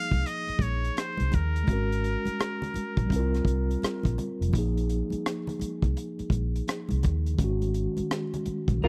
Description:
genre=R&B, neo-soul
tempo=84 BPM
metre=4/4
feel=swing 63% on 16ths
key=Bb minor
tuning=A4 = 440 Hz
part: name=trumpet with straight mute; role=melody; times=0.0-4.2 s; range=Bb4 to F5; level=-36 LUFS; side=equal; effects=none
part: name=mellow tine electric piano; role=accompaniment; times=0.0-8.9 s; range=D3 to Bb4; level=-34 LUFS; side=equal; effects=none
part: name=vintage muted fingered electric bass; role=bass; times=0.1-8.9 s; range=F1 to Eb2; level=-30 LUFS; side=equal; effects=none
part: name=crunchy breakbeat drum kit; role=drums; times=0.1-8.8 s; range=hi-hat, kick drum, rim click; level=-31 LUFS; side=equal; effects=none
part: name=congas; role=percussion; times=0.1-8.9 s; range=none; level=-40 LUFS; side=equal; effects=none
part: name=semi-hollow electric guitar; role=second line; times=8.8-8.9 s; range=F4 to Bb4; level=-25 LUFS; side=equal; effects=lush chorus
room=small room ambience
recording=dry, close 1970s-style studio recording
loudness=-28 LUFS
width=mono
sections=0.0-8.9 A section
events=none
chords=0.0 Bb9sus4; 1.7 Ab9sus4; 3.1 C7sus4; 4.5 Bb7sus4; 7.4 Ab7sus4

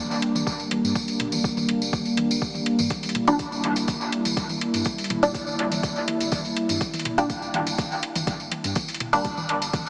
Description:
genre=dub techno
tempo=123 BPM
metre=4/4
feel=straight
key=unclear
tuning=A4 = 440 Hz
part: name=warbly tape-like pad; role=sustained chords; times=0.0-9.9 s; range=G3 to E4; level=-26 LUFS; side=equal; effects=chorus, built-in reverb, sidechain pumping
part: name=pure sine sub bass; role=bass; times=0.0-9.8 s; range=G1 to G2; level=-37 LUFS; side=equal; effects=sidechain pumping
part: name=electronic toms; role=percussion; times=0.1-9.8 s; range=none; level=-35 LUFS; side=equal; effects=sidechain pumping on toms, studio reverb, dub echo
part: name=tambourine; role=percussion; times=0.1-9.9 s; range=none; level=-30 LUFS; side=equal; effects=none
part: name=electronic hi-hat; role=drums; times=0.2-9.8 s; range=none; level=-31 LUFS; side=equal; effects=overdrive, studio reverb
part: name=electronic kick drum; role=drums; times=0.5-9.8 s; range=none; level=-30 LUFS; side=equal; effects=overdrive, studio reverb
part: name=filtered dub chord stab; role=stabs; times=3.3-9.3 s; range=Bb2 to D4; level=-26 LUFS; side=equal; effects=phaser, sidechain pumping, dub echo
room=moderate huge ambient reverb, RT60 3.9 s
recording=heavily compressed radio sound, multiband compression, vinyl crackle, small speaker sound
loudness=-22 LUFS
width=side -32 dB against mid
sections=0.0-9.9 A section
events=none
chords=0.0 Gm

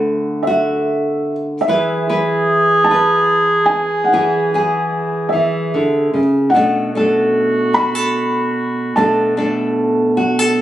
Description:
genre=acoustic folk duo or small band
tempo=49 BPM (dotted quarters)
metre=6/8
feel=straight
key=unclear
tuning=A4 = 439 Hz
part: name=felt-muted upright piano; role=melody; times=0.0-10.6 s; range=E5 to B5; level=-19 LUFS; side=right 1 dB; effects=none
part: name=nylon-string guitar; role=accompaniment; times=0.0-10.6 s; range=B2 to B4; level=-16 LUFS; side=equal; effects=none
part: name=mellow clarinet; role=second line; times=1.7-10.6 s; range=F#4 to G#4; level=-18 LUFS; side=right 1 dB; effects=none
room=moderate studio reverb, RT60 0.7 s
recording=recorded on a phone in the room, studio ambience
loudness=-13 LUFS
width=side -13 dB against mid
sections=0.0-10.6 A section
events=none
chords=0.0 Dadd9; 1.7 E; 6.5 Bm7

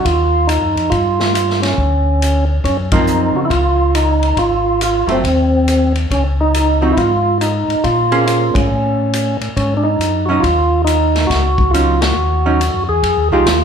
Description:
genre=soul jazz organ trio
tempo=139 BPM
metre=4/4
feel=swing 65% on 8ths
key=Ab mixolydian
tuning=A4 = 440 Hz
part: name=percussive tonewheel organ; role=melody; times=0.0-13.6 s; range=C4 to Ab4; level=-15 LUFS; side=right 1 dB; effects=slow rotary speaker
part: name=archtop guitar, miked and amplified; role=accompaniment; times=0.0, 2.9-13.5 s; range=F3 to C5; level=-18 LUFS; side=right 3 dB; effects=none
part: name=mellow tonewheel organ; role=bass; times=0.0-13.6 s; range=Gb1 to Db3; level=-17 LUFS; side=left 1 dB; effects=slow rotary speaker
part: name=vintage drum kit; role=drums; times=0.1-13.6 s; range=hi-hat, kick drum, ride cymbal, snare drum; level=-22 LUFS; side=left 1 dB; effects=none
room=wet large studio reverb, RT60 0.9 s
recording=heard from further back in the room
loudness=-12 LUFS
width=side -7 dB against mid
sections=0.0-13.0 A section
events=band accent 2.9, 8.5, 11.9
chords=0.0 Ab7(no3) (rootless); 0.9 G5; 2.6 Gbmaj7#11; 4.4 Ab7; 6.1 Dbadd9; 7.8 Bbm9; 8.7 A; 9.6 Ab7sus4; 13.0 Fm9

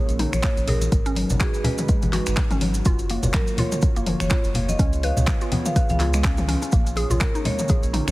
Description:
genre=afro house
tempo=124 BPM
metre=4/4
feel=swing 57% on 16ths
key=unclear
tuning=A4 = 436 Hz
part: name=warm analog pad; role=sustained chords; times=0.0-8.1 s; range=G#3 to C#5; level=-33 LUFS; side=right 1 dB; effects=chorus, sidechain pumping
part: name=mallet-like synth pluck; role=arpeggios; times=0.0-8.1 s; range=E#3 to B4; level=-29 LUFS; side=equal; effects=chorus, sidechain pumping, digital delay
part: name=round analog bass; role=bass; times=0.1-8.1 s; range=F#1 to C#2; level=-24 LUFS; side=equal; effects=tube saturation, sidechain pumping
part: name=deep house drum kit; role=drums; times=0.1-8.1 s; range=finger snaps, handclaps, hi-hat, toms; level=-28 LUFS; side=left 1 dB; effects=none
part: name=congas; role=percussion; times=0.1-8.1 s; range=none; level=-27 LUFS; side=left 1 dB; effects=none
part: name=maracas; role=percussion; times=0.1-8.1 s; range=none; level=-36 LUFS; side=right 1 dB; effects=none
part: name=marimba with hard mallets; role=melody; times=0.3-8.1 s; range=G#4 to E#5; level=-31 LUFS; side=equal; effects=digital delay
part: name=electronic kick drum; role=drums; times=0.4-7.8 s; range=none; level=-21 LUFS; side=equal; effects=none
room=digital ambience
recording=heavily compressed radio sound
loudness=-19 LUFS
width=side -19 dB against mid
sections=0.0-8.1 A section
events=none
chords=0.0 A#m; 0.9 G#m7; 2.9 F#maj7; 4.8 C#7; 6.7 A#m

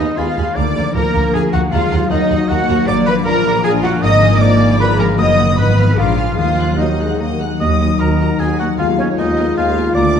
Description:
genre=cinematic, playful, whimsical film cue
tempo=154 BPM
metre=3/4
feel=straight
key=Eb minor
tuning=A4 = 439 Hz
part: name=celesta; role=melody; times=0.0-10.2 s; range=Db5 to Eb6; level=-26 LUFS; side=left 6 dB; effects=none
part: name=rich chamber violin section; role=melody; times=0.0-10.2 s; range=Eb5 to Eb6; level=-28 LUFS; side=left 2 dB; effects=none
part: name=flute section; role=second line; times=0.0-10.2 s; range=Db5 to Eb6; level=-26 LUFS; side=right 3 dB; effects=none
part: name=rich studio violin section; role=second line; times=0.0-10.2 s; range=Db5 to Gb6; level=-29 LUFS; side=left 2 dB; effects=none
part: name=warm oboe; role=second line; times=0.0-10.2 s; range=Db4 to Eb5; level=-24 LUFS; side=right 1 dB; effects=none
part: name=rich chamber viola section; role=accompaniment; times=0.0-10.2 s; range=Gb3 to Gb4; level=-22 LUFS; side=right 2 dB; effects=none
part: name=concert harp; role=arpeggios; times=0.0-10.2 s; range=Gb2 to Cb6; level=-19 LUFS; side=left 7 dB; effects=none
part: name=clear chamber double bass section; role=bass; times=0.0-10.2 s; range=Gb1 to Eb2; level=-18 LUFS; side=right 3 dB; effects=none
part: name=warm studio cello section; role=bass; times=0.0-10.2 s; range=D2 to Eb5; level=-20 LUFS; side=right 1 dB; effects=none
part: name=mellow French horn section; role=sustained chords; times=0.2-10.2 s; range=F3 to F4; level=-23 LUFS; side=left 3 dB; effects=none
room=moderate scoring stage reverb, RT60 1.9 s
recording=dark, warm production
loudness=-12 LUFS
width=side -7 dB against mid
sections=0.0-7.6 A section; 7.6-10.2 A section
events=none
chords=0.0 Fm7b5/Eb; 0.6 Bb/D; 1.7 Ebm; 2.9 Bb; 4.0 Bb7/Ab; 5.2 Ebm/Gb; 5.6 Fm7b5/Ab; 6.0 Bb7; 6.4 Ebm; 8.8 Fm7b5/Eb

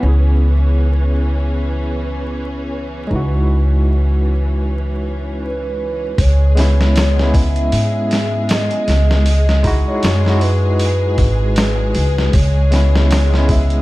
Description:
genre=trip hop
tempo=78 BPM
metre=4/4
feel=swing 56% on 16ths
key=C# minor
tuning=A4 = 442 Hz
part: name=barky tine electric piano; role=accompaniment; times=0.0-13.8 s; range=G#3 to G#4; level=-23 LUFS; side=equal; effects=tremolo, tape echo
part: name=warm studio string section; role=sustained chords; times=0.0-13.8 s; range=E3 to G#4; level=-28 LUFS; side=equal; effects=low-pass filter
part: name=upright bass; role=bass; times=0.0-13.8 s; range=G#1 to G#2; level=-15 LUFS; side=equal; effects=none
part: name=pure breathy sine lead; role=melody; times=5.4-13.8 s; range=B4 to E5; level=-22 LUFS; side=left 1 dB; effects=chorus, tape echo
part: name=boom bap sampler-style drum kit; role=drums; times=6.2-13.8 s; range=hi-hat, kick drum, snare drum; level=-18 LUFS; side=equal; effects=none
room=little or no reverb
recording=dark, warm production, vinyl crackle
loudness=-13 LUFS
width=side -18 dB against mid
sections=0.0-6.2 A section; 6.2-13.8 B section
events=none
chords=0.0 C#m7; 3.1 Emaj9/C#; 6.2 C#m7; 9.3 Emaj9/C#; 12.3 C#m7

